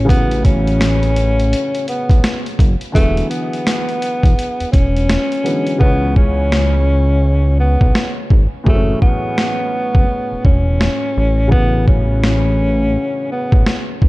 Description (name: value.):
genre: hip hop, boom-bap hip-hop.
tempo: 84 BPM.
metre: 4/4.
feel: swing 60% on 16ths.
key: unclear.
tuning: A4 = 440 Hz.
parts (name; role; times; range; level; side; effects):
mellow tenor saxophone; melody; 0.0-13.9 s; A3 to C#4; -19 LUFS; equal; high-pass filter, low-pass filter, analog delay.
warm upright piano; accompaniment; 0.0-14.1 s; A2 to G#4; -23 LUFS; equal; cassette tape, high-pass filter, low-pass filter.
fat analog bass; bass; 0.0-14.1 s; E1 to C#2; -16 LUFS; equal; none.
boom bap sampler-style drum kit; drums; 0.1-14.1 s; hi-hat, kick drum, snare drum; -15 LUFS; equal; none.
room: digital ambience.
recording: dark, warm production.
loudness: -13 LUFS.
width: side -20 dB against mid.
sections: 0.0-14.1 A section.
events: hi-hats muted 5.8-14.1.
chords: 0.0 A6; 3.0 E7; 5.8 C#m7; 8.7 F#m7; 11.2 A6.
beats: | 0.09 0.81 1.52 2.24 | 2.95 3.67 4.38 5.09 | 5.81 6.52 7.24 7.95 | 8.66 9.38 10.09 10.81 | 11.52 12.24 12.95 13.66.